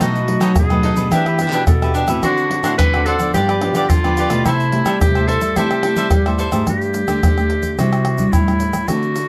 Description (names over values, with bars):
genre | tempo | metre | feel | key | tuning
samba and choro | 108 BPM | 4/4 | straight | C major | A4 = 441 Hz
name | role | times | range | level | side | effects
bright clarinet | second line | 0.0-9.3 s | E4 to B4 | -23 LUFS | equal | none
cavaquinho | accompaniment | 0.0-6.7 s | D4 to F#5 | -24 LUFS | equal | none
nylon-string guitar | accompaniment | 0.0-9.3 s | F#2 to A4 | -24 LUFS | equal | none
nylon-string guitar | bass | 0.0-9.2 s | G2 to G3 | -24 LUFS | equal | none
egg shaker, surdo, pandeiro and tamborim | percussion | 0.0-9.3 s | none | -21 LUFS | equal | none
room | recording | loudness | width
moderate studio reverb, RT60 0.6 s | none | -16 LUFS | mono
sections
0.0-6.7 A section; 6.7-9.3 B section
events
none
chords
0.0 B7; 1.1 Em7; 2.2 D7; 3.3 G7; 4.5 C6; 6.7 Gsus2; 7.8 Cadd9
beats
| 0.01 0.57 1.12 1.68 | 2.23 2.79 3.35 3.90 | 4.45 5.01 5.56 6.12 | 6.67 7.22 7.78 8.33 | 8.89